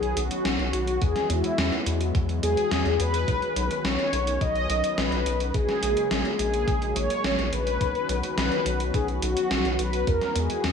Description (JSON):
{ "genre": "synthwave", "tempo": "106 BPM", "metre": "4/4", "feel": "straight", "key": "B major", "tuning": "A4 = 440 Hz", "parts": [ { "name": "mellow synth brass", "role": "melody", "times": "0.0-10.7 s", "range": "E4 to D#5", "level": "-26 LUFS", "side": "left 1 dB", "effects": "chorus, cassette tape, digital delay, shimmer reverb" }, { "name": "warm analog pad", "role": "sustained chords", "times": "0.0-10.7 s", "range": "C#3 to F#4", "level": "-32 LUFS", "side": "equal", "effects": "chorus, sidechain pumping, shimmer reverb" }, { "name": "round analog bass", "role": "bass", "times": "0.0-10.7 s", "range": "A#1 to E2", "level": "-28 LUFS", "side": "left 1 dB", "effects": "none" }, { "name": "gated 80s digital drum machine", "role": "drums", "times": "0.0-10.7 s", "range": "hi-hat, snare drum", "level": "-29 LUFS", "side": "equal", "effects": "gated reverb, gated reverb snare, small room reverb" }, { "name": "electronic kick drum", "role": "drums", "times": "1.0-10.2 s", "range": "none", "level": "-27 LUFS", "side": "equal", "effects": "small room reverb" } ], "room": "moderate scoring stage reverb, RT60 1.7 s, digital ambience", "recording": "none", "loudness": "-22 LUFS", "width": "side -6 dB against mid", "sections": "0.0-10.7 A section", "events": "none", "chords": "0.0 Badd9; 1.0 Eadd9; 3.3 Badd9; 5.5 F#add9/A#; 7.8 Badd9; 10.1 Eadd9", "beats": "0.45 | 1.02 1.58 2.15 2.71 | 3.28 3.85 4.41 4.98 | 5.54 6.11 6.68 7.24 | 7.81 8.38 8.94 9.51 | 10.07 10.64" }